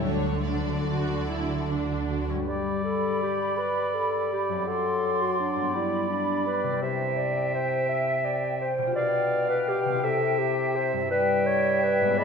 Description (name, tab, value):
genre	classical, orchestral ballroom waltz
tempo	140-180 BPM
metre	3/4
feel	rubato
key	G major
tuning	A4 = 440 Hz
part	rich studio violin section	melody	0.0-2.3 s	C#5 to D5	-38 LUFS	left 2 dB	none
part	warm symphonic violin section	second line	0.0-2.3 s	F#4 to A4	-36 LUFS	right 2 dB	none
part	rich symphonic viola section	accompaniment	0.0-2.4 s	A3 to F#4	-34 LUFS	right 2 dB	none
part	concert harp	arpeggios	0.0-12.2 s	F#2 to B4	-32 LUFS	left 9 dB	none
part	rich symphonic double bass section	bass	0.0-2.3 s	D2	-31 LUFS	right 4 dB	none
part	warm symphonic cello section	bass	0.0-2.3 s	D3	-33 LUFS	right 3 dB	none
part	dark clarinet	second line	2.1-12.2 s	D4 to E5	-27 LUFS	left 2 dB	none
part	bright large flute ensemble	second line	2.5-12.2 s	G5 to C6	-31 LUFS	equal	none
part	clear oboe	second line	2.5-12.2 s	D5 to F5	-32 LUFS	right 2 dB	none
part	mellow bassoon	accompaniment	2.5-12.2 s	B2 to G#3	-30 LUFS	right 4 dB	none
room	wet scoring stage reverb, RT60 1.8 s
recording	none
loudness	-24 LUFS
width	side -6 dB against mid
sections	0.0-2.5 A section; 2.5-12.2 B section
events	none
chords	0.0 D; 2.5 G; 4.7 D7/F#; 5.7 G; 6.8 C; 11.1 Em7/G